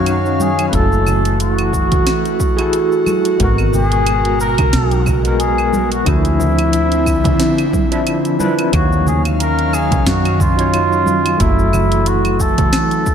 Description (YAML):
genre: sunset chillout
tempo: 90 BPM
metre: 4/4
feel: swing 56% on 16ths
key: unclear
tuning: A4 = 436 Hz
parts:
  - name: trumpet with cup mute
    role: melody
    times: 0.0-13.1 s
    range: Fb4 to Cb5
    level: -20 LUFS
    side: left 1 dB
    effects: ping-pong delay
  - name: overdriven tine electric piano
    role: accompaniment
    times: 0.0-13.1 s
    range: F3 to F5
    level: -20 LUFS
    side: moving between left 3 dB and right 4 dB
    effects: fast tremolo, auto-pan, tape echo
  - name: airy breathy pad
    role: sustained chords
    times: 0.0-13.1 s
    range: Cb3 to F5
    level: -20 LUFS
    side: right 1 dB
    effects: chorus
  - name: woody fretless electric bass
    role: bass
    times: 0.0-12.7 s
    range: Gb1 to Gb2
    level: -18 LUFS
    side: equal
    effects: ensemble chorus
  - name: smooth R&B drum kit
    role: drums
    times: 0.1-13.1 s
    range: claves, hi-hat, shaker, snare drum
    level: -23 LUFS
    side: right 1 dB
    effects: none
  - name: congas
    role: percussion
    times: 0.4-12.7 s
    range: none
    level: -25 LUFS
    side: right 3 dB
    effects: none
  - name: electronic kick drum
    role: drums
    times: 0.7-13.1 s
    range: none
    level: -19 LUFS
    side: equal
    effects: overdrive
room: moderate plate reverb, RT60 2.9 s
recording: dreamy mix soaked in reverb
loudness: -12 LUFS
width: side -8 dB against mid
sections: 0.0-13.1 A section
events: none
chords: 0.0 Ebm9; 0.7 Gbm9; 3.4 Abm9; 6.1 Dm9; 8.7 Ebm9; 11.4 Gbm7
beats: 0.06 | 0.73 1.40 2.06 2.73 | 3.40 4.06 4.73 5.40 | 6.06 6.73 7.40 8.06 | 8.73 9.40 10.06 10.73 | 11.40 12.06 12.73